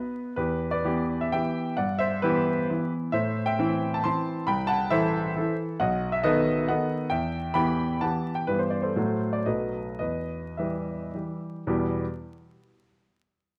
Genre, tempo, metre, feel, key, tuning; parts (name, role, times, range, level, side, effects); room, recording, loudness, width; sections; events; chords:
classical, romantic triple-time dance for piano with dotted rhythms; 99-146 BPM; 3/4; rubato; E minor; A4 = 440 Hz
clear grand piano; solo; 0.0-12.1 s; B1 to C6; -27 LUFS; equal
moderate recital hall reverb, RT60 1.4 s; close, detailed microphones, vinyl crackle; -27 LUFS; mono
0.4-11.7 A section; 11.7-13.2 B section
slowing down 7.8-11.7
0.4 Em; 1.8 Em/G; 3.1 Am; 4.5 Am/C; 5.8 B7; 7.1 Em; 8.5 Em/G; 9.0 F#dim/A; 9.5 B7; 10.0 Em